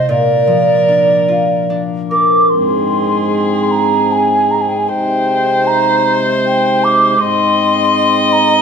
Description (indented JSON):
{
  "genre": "celtic folk, Celtic slow air",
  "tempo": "76 BPM",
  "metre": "3/4",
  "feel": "uneven beats, rubato",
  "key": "unclear",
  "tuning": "A4 = 440 Hz",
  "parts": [
    { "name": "mellow hollow wooden flute", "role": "melody", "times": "0.0-8.6 s", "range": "D5 to D6", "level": "-13 LUFS", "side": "right 2 dB", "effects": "none" },
    { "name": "dark viola", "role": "second line", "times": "0.0-8.6 s", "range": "Ab4 to Eb5", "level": "-17 LUFS", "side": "left 4 dB", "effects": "none" },
    { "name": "concert harp", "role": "accompaniment", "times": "0.0-4.5 s", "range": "Bb2 to C5", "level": "-17 LUFS", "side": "left 4 dB", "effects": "none" },
    { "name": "pedal harmonium", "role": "sustained chords", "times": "2.5-8.6 s", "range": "Ab2 to Eb4", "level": "-18 LUFS", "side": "right 3 dB", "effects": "none" }
  ],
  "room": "moderate recital hall reverb, RT60 1.4 s",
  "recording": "none",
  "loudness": "-10 LUFS",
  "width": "side -6 dB against mid",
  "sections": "0.0-2.5 A section; 2.5-8.6 B section",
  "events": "none",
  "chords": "0.1 Bb; 2.5 Ab; 4.9 Cm; 7.2 Ab"
}